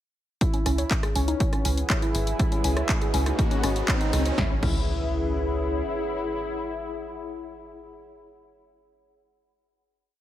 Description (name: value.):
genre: melodic techno.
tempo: 121 BPM.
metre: 4/4.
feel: straight.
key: C# minor.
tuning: A4 = 441 Hz.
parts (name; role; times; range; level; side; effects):
analog synth brass; melody; 0.4-8.1 s; C#4 to F#4; -32 LUFS; left 3 dB; chorus, digital delay.
dark analog pad; sustained chords; 1.4-7.8 s; C#4 to G#5; -35 LUFS; right 1 dB; chorus, sidechain pumping.
electronic kick drum; drums; 0.4-4.8 s; none; -26 LUFS; equal; none.
house drum kit; drums; 0.4-4.8 s; crash cymbal, handclaps, hi-hat, rim click, snare drum; -30 LUFS; equal; none.
riser and impact; sound effects; 1.9-7.9 s; none; -34 LUFS; equal; none.
warbly tape-like pad; texture; 1.3-8.1 s; G#4 to B5; -35 LUFS; left 1 dB; chorus, built-in reverb, sidechain pumping.
woody wave-folded pluck; arpeggios; 0.5-4.8 s; C#4 to C#5; -32 LUFS; equal; chorus, sidechain pumping, dub echo.
tight sequencer bass; bass; 0.7-5.8 s; G#1 to C#2; -27 LUFS; equal; sidechain pumping.
room: light reverb, digital ambience.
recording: none.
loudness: -23 LUFS.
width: side -12 dB against mid.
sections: 0.4-4.4 build; 4.4-8.3 final chord.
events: build-up 0.4-4.4; riser 1.9-4.4.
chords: 0.4 C#m7; 2.4 G#m7/C#; 4.4 C#m7.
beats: | 0.41 0.91 1.40 1.90 | 2.40 2.89 3.39 3.88 | 4.38 4.88 5.37 5.87 | 6.36 6.86 7.35 7.85.